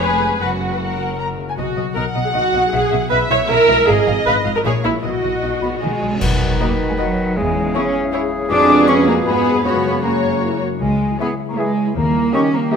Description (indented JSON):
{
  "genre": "cinematic, playful, whimsical film cue",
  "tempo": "156 BPM",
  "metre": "3/4",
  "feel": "straight",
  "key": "B major",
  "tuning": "A4 = 440 Hz",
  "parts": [
    { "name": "muted studio violin section", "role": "melody", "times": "0.0-12.8 s", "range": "Cb5 to A#5", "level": "-27 LUFS", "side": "left 3 dB", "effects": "none" },
    { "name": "muted studio violin section", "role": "second line", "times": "0.0-12.8 s", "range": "F#4 to F#5", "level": "-24 LUFS", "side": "left 1 dB", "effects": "none" },
    { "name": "muted studio viola section", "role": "accompaniment", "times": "0.0-12.8 s", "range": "E4 to C#5", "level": "-19 LUFS", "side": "right 2 dB", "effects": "none" },
    { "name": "concert harp", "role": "arpeggios", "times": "0.0-12.8 s", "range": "E2 to C#6", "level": "-25 LUFS", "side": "left 10 dB", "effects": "none" },
    { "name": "muted studio cello section", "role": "bass", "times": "0.0-12.8 s", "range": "F2 to D4", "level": "-21 LUFS", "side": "right 3 dB", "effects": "none" },
    { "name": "muted studio double bass section", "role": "bass", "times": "0.0-12.3 s", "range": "F1 to Ab2", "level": "-25 LUFS", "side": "right 4 dB", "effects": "none" },
    { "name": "cymbal swell, clash cymbals and concert bass drum", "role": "percussion", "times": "3.9-6.9 s", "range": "none", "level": "-25 LUFS", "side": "left 1 dB", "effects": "none" },
    { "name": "hollow concert flute", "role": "second line", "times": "5.6-12.8 s", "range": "F#5 to D6", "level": "-23 LUFS", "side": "left 3 dB", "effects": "none" },
    { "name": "clear clarinet", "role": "second line", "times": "6.2-12.8 s", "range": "F#4 to B4", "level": "-26 LUFS", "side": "left 2 dB", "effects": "none" },
    { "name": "dark bassoon", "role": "accompaniment", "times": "6.2-12.8 s", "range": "Cb3 to E3", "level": "-26 LUFS", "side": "right 3 dB", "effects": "none" },
    { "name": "mellow French horn section", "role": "sustained chords", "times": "6.2-12.8 s", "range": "C#4 to G#4", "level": "-28 LUFS", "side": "left 4 dB", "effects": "none" }
  ],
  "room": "moderate scoring stage reverb, RT60 1.5 s",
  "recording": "none",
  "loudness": "-15 LUFS",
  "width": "side -6 dB against mid",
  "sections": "0.0-6.2 A section; 6.2-12.8 B section",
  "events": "band accent 6.2-6.6",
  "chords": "0.4 F#; 1.6 B; 2.7 C#m7/B; 3.9 C#7/G#; 4.6 F#7/A#; 5.0 B; 7.4 C#m/E; 8.5 Fdim7; 9.6 F#; 10.8 C#m; 12.0 D#",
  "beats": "0.03 | 0.41 0.80 1.19 | 1.58 1.96 2.35 | 2.73 3.11 3.49 | 3.88 4.26 4.64 | 5.03 5.43 5.82 | 6.21 6.60 6.98 | 7.37 7.75 8.13 | 8.50 8.88 9.26 | 9.65 10.04 10.43 | 10.82 11.20 11.59 | 11.97 12.35 12.73"
}